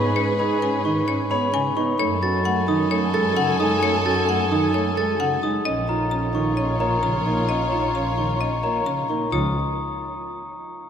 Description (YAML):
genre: classical, minimalist pattern music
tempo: 131 BPM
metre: 4/4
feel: straight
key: Db mixolydian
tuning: A4 = 440 Hz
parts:
  - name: mellow soprano saxophone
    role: second line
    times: 0.0-9.1 s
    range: A4 to Db5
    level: -31 LUFS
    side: right 1 dB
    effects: none
  - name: chamber organ, principal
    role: accompaniment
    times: 0.0-9.5 s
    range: Db3 to Eb4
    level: -28 LUFS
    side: right 2 dB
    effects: none
  - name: rich studio violin section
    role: sustained chords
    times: 0.0-9.1 s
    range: F4 to Ab5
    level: -29 LUFS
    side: left 1 dB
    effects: none
  - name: glockenspiel with rubber mallets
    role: arpeggios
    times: 0.0-9.5 s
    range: Bb5 to A6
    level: -26 LUFS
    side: left 4 dB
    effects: none
  - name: warm concert grand piano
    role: arpeggios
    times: 0.0-9.5 s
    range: Eb4 to Db5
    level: -27 LUFS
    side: right 4 dB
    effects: none
  - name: rich studio double bass section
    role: bass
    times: 0.0-9.5 s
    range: Bb1 to Ab2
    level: -26 LUFS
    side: right 1 dB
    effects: none
  - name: marimba with hard mallets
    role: melody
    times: 0.2-9.5 s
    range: Db5 to Bb5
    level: -29 LUFS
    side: left 6 dB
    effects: none
room: wet cathedral reverb, RT60 6.2 s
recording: in a vast, echoing space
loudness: -19 LUFS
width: side -8 dB against mid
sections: 0.0-9.3 A section; 9.3-10.9 B section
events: none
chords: 0.0 Abm; 2.0 Gbmadd9; 5.7 Bbm; 9.3 Dbadd9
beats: | 0.16 0.62 1.08 1.54 | 2.00 2.45 2.91 3.37 | 3.83 4.29 4.74 5.20 | 5.66 6.12 6.58 7.03 | 7.49 7.95 8.41 8.87 | 9.32